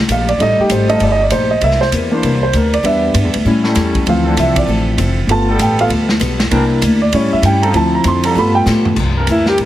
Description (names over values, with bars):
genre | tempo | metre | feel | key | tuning
jazz, big band swing | 196 BPM | 4/4 | swing 63% on 8ths | C mixolydian | A4 = 443 Hz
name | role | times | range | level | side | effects
upright bass | bass | 0.0-9.7 s | F1 to A2 | -16 LUFS | equal | none
picked steel-string acoustic guitar | accompaniment | 0.1-9.7 s | A2 to A4 | -24 LUFS | left 5 dB | none
warm grand piano | accompaniment | 0.1-9.7 s | E3 to C6 | -15 LUFS | right 1 dB | none
swinging big-band drum kit | drums | 0.1-9.7 s | crash cymbal, hi-hat, kick drum, ride cymbal, snare drum, toms | -21 LUFS | right 1 dB | none
bright trombone section | sustained chords | 0.9-9.6 s | D3 to C5 | -24 LUFS | equal | none
warm alto saxophone | melody | 9.3-9.6 s | E4 to G4 | -13 LUFS | equal | none
room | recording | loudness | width
light reverb | heavily compressed radio sound | -11 LUFS | side -13 dB against mid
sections
0.0-9.0 A section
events
grand piano solo 0.0-9.0; drum fill 8.7-9.0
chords
0.0 F9; 1.6 C9; 2.8 Em7; 3.5 A7; 4.1 Dm7; 5.3 G9; 6.5 C9; 7.1 A7; 7.7 Dm7; 8.4 G9; 9.0 C9